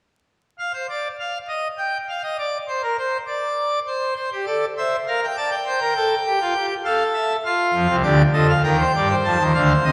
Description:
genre	classical, baroque-style 3-part fugue for pipe organ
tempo	101 BPM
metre	3/4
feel	straight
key	unclear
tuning	A4 = 440 Hz
part	pipe organ, full organ	solo	0.6-9.9 s	C2 to A5	-21 LUFS	equal	none
room	wet church reverb, RT60 2.6 s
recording	vinyl crackle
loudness	-21 LUFS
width	mono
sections	0.3-9.9 A section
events	none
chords	0.3 N.C.; 3.9 C69; 5.1 Bb; 5.7 C5; 6.9 F/A; 7.4 F13; 8.6 Eb; 9.2 F

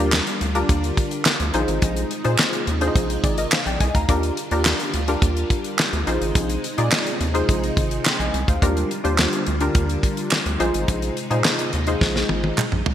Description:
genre	early-eighties boogie funk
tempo	106 BPM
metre	4/4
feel	straight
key	unclear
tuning	A4 = 440 Hz
part	funky polysynth comp	accompaniment	0.0-12.6 s	D4 to C6	-24 LUFS	left 1 dB	chorus
part	string machine, full ensemble	sustained chords	0.0-12.9 s	C3 to F4	-29 LUFS	equal	phaser, ensemble chorus
part	rubbery square bass	bass	0.0-12.9 s	Ab1 to Bb2	-24 LUFS	equal	none
part	damped 70s drum kit	drums	0.1-12.9 s	handclaps, hi-hat, kick drum, snare drum, toms	-21 LUFS	equal	gated reverb
part	group handclap	percussion	0.1-12.7 s	none	-30 LUFS	right 4 dB	none
room	moderate plate reverb, RT60 2.1 s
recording	bright 1980s-style digital production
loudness	-18 LUFS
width	side -10 dB against mid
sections	0.0-12.9 A section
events	drum fill 12.0-12.9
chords	0.0 Ebmaj9; 1.5 Bb9sus4; 4.1 Ebmaj9; 6.1 Bb9sus4; 8.6 Ebmaj9; 10.6 Bb9sus4

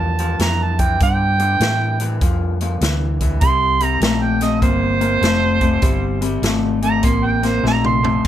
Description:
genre	electric blues shuffle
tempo	99 BPM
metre	4/4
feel	swing 65% on 8ths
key	C mixolydian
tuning	A4 = 440 Hz
part	mellow harmonica	second line	0.0-8.2 s	C5 to C6	-20 LUFS	right 4 dB	overdrive
part	electric guitar through a small old amp	riff	0.0-8.2 s	G2 to Bb3	-21 LUFS	left 3 dB	spring reverb
part	hollow-body short-scale fingered electric bass	bass	0.0-8.3 s	F1 to A2	-20 LUFS	equal	none
part	swinging big-band drum kit	drums	0.2-8.3 s	crash cymbal, hi-hat, kick drum, snare drum, toms	-21 LUFS	equal	none
room	light reverb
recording	none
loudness	-15 LUFS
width	side -11 dB against mid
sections	0.0-8.3 A section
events	harmonica solo 0.0-8.3; drum fill 7.6-8.3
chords	0.0 Gsus2; 3.4 C5

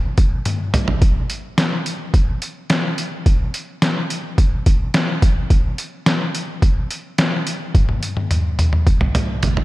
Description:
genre	pop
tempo	107 BPM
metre	4/4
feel	straight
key	none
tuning	none
part	trip hop sampler-style drum kit	drums	0.2-9.6 s	hi-hat, kick drum, snare drum, toms	-16 LUFS	equal	overdrive
room	light reverb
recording	dark, warm production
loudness	-16 LUFS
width	side -18 dB against mid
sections	0.0-9.6 A section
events	drum fill 0.5-1.0, 7.7-9.6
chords	none

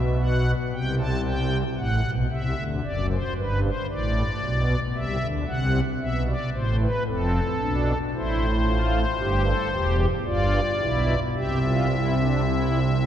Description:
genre	classical, baroque-style 3-part fugue for pipe organ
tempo	56 BPM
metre	4/4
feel	straight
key	C major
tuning	A4 = 440 Hz
part	pipe organ, strings celeste	solo	0.0-13.1 s	E1 to A5	-22 LUFS	equal	none
room	wet cathedral reverb, RT60 4.3 s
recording	dark, warm production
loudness	-22 LUFS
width	side -10 dB against mid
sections	0.0-13.1 A section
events	none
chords	0.0 N.C.; 0.7 C; 2.8 Bm/F#; 4.9 Am/C; 7.1 Dm7/F; 9.2 C/G; 10.3 G7; 11.3 C

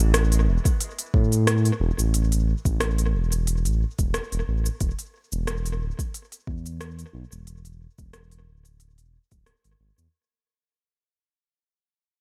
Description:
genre	organic downtempo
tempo	90 BPM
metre	4/4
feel	swing 54% on 16ths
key	unclear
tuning	A4 = 440 Hz
part	smooth synth bass	bass	0.0-10.1 s	D1 to A2	-25 LUFS	equal	sidechain pumping
part	organic electronic drum kit	drums	0.1-10.1 s	hi-hat, rim click, shaker	-31 LUFS	equal	overdrive, tape echo
part	electronic kick drum	drums	0.7-9.4 s	none	-26 LUFS	equal	overdrive
room	digital ambience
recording	echo-heavy mix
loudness	-24 LUFS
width	mono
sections	0.0-10.1 A section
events	fade-out 0.0-10.1; filter sweep on analog synth bass 0.0-10.1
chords	none

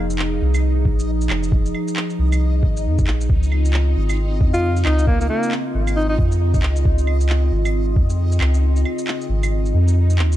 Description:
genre	future garage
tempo	135 BPM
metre	4/4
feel	swing 61% on 16ths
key	unclear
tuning	A4 = 440 Hz
part	warbly tape-like pad	sustained chords	0.0-10.4 s	Db3 to Ab4	-25 LUFS	equal	chorus, built-in reverb, sidechain pumping
part	soft dub sub bass	bass	0.0-10.4 s	F1 to F2	-18 LUFS	equal	tube saturation, sidechain pumping
part	backwards swelling texture	texture	0.0-10.4 s	Eb4 to Eb5	-32 LUFS	left 1 dB	built-in reverb
part	electronic shaker, handclaps and claves	drums	0.1-10.4 s	none	-28 LUFS	right 2 dB	overdrive, studio reverb
part	electronic kick drum	drums	0.9-8.1 s	none	-18 LUFS	equal	studio reverb
part	clear alto saxophone	melody	4.5-6.2 s	Bb3 to F4	-23 LUFS	equal	analog delay
room	digital ambience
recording	dark, warm production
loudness	-16 LUFS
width	side -13 dB against mid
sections	0.0-10.4 A section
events	kick drops out 8.6-10.4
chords	0.0 Fm7; 3.3 Dbmaj7

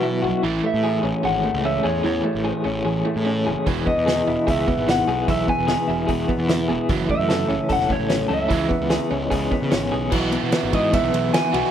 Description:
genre	indie rock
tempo	149 BPM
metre	4/4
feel	straight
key	E major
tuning	A4 = 440 Hz
part	electric guitar through a small old amp	melody	0.0-11.7 s	B4 to G#5	-24 LUFS	equal	slapback echo
part	electric guitar through a small old amp	riff	0.0-11.7 s	E3 to A4	-22 LUFS	left 3 dB	tremolo
part	overdriven electric guitar	riff	0.0-11.7 s	E2 to F#4	-28 LUFS	right 10 dB	analog chorus, slapback echo
part	fuzz picked electric bass	bass	0.0-11.6 s	E1 to C#3	-27 LUFS	right 1 dB	overdrive
part	loose indie drum kit	drums	3.7-11.7 s	crash cymbal, hi-hat, kick drum, ride cymbal, snare drum	-25 LUFS	right 1 dB	none
room	little or no reverb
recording	rough home demo mix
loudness	-18 LUFS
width	side -9 dB against mid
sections	0.0-10.1 A section; 10.1-11.7 B section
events	none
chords	0.4 Amaj7; 3.7 E; 6.9 F#m7; 8.5 C#m7; 10.1 Bsus4

